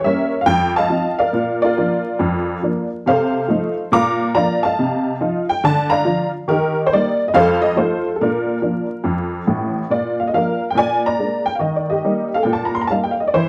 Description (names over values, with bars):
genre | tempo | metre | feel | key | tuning
jazz, stride piano | 140 BPM | 4/4 | swing 65% on 8ths | Bb major | A4 = 440 Hz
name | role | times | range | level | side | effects
honky-tonk upright piano | solo | 0.0-13.5 s | A1 to D6 | -18 LUFS | equal | none
room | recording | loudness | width
moderate club reverb, RT60 0.8 s | vinyl crackle | -18 LUFS | mono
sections
0.0-9.9 A section; 9.9-13.5 A section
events
none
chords
0.5 F7; 1.3 Bb; 3.1 F7/C; 3.9 Bb; 4.8 F7/C; 5.6 Bb/D; 6.5 Eb; 7.3 F7; 8.2 Bb; 10.8 Bb7; 11.6 Eb